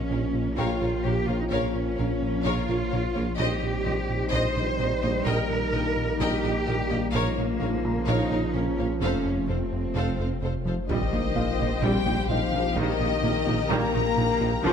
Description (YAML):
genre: cinematic, hybrid orchestral and electronic film score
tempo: 128 BPM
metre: 4/4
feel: straight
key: Bb dorian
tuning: A4 = 440 Hz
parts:
  - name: dark French horn section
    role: sustained chords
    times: 0.0-14.7 s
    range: Eb3 to F4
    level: -32 LUFS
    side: left 7 dB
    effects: none
  - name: ethereal airy pad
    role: sustained chords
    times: 0.0-14.7 s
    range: Eb3 to Eb5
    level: -35 LUFS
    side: left 2 dB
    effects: ensemble chorus, built-in reverb
  - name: mellow trombone section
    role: sustained chords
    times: 0.0-14.7 s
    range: Bb2 to Db4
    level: -35 LUFS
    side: right 5 dB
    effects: none
  - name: rubbery square bass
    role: riff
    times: 0.0-14.7 s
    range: F2 to Bb3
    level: -32 LUFS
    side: right 2 dB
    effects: none
  - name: saturated sub bass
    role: bass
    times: 0.0-14.7 s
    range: F1 to Bb1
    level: -33 LUFS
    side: left 1 dB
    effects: none
  - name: warm symphonic cello section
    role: bass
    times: 0.0-14.7 s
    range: Bb2 to C5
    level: -31 LUFS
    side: right 2 dB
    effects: none
  - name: clear symphonic violin section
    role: melody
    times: 0.1-14.7 s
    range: Eb5 to Bb5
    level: -34 LUFS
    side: left 4 dB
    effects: none
  - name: warm symphonic violin section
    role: second line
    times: 0.1-14.7 s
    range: F4 to Eb5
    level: -34 LUFS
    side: left 4 dB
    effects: none
  - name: clear symphonic viola section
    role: accompaniment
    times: 0.1-14.7 s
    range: Eb3 to C5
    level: -34 LUFS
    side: equal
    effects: none
  - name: warm symphonic double bass section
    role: bass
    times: 0.1-14.7 s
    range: F1 to Bb1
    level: -34 LUFS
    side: right 4 dB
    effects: none
  - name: warm tuba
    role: bass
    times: 0.1-14.7 s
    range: F1 to Bb1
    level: -35 LUFS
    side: right 3 dB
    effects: none
  - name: felt-muted upright piano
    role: texture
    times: 0.6-3.4, 7.8-14.7 s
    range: Eb4 to Bb5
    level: -39 LUFS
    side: left 5 dB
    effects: none
  - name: impact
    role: sound effects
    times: 10.9-12.8 s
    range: none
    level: -36 LUFS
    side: left 1 dB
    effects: none
room: moderate concert hall reverb, RT60 1.8 s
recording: none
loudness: -23 LUFS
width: side -7 dB against mid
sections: 0.0-10.9 A section; 10.9-14.7 B section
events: impact 10.9-12.8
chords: 0.0 Bbm; 3.4 Cm/Bb; 5.3 Eb/Bb; 7.1 Bbm; 9.0 F; 10.9 Cm/Bb; 12.8 Eb/Bb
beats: 0.11 0.58 1.05 | 1.52 1.99 2.46 2.92 | 3.39 3.86 4.33 4.80 | 5.27 5.74 6.21 6.67 | 7.14 7.61 8.08 8.55 | 9.02 9.49 9.96 10.43 | 10.89 11.36 11.83 12.30 | 12.77 13.24 13.71 14.18 | 14.64